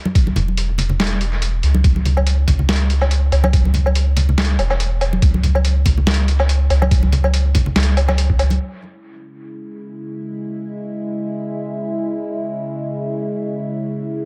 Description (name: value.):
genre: deep dubstep.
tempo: 142 BPM.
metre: 4/4.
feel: swing 55% on 16ths, half-time.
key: C# minor.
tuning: A4 = 440 Hz.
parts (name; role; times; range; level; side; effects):
congas; percussion; 0.1-8.6 s; none; -26 LUFS; equal; dub echo.
electronic kick drum; drums; 0.2-8.4 s; none; -19 LUFS; equal; none.
trip hop sampler-style drum kit; drums; 0.2-8.6 s; hi-hat, snare drum, woodblock; -24 LUFS; equal; low-pass filter on hats, low-pass filter on snare, low-pass filter on perc, low-pass filter on room, dub echo.
soft dub sub bass; bass; 0.4-8.6 s; E1 to C#2; -18 LUFS; equal; none.
overtone-sweeping drone; sustained chords; 9.1-14.3 s; C#3 to E4; -26 LUFS; equal; chorus, built-in reverb.
room: light reverb, digital ambience.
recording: echo-heavy mix.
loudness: -18 LUFS.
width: mono.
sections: 0.0-8.6 A section; 8.6-14.3 B section.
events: none.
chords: 0.0 C#m.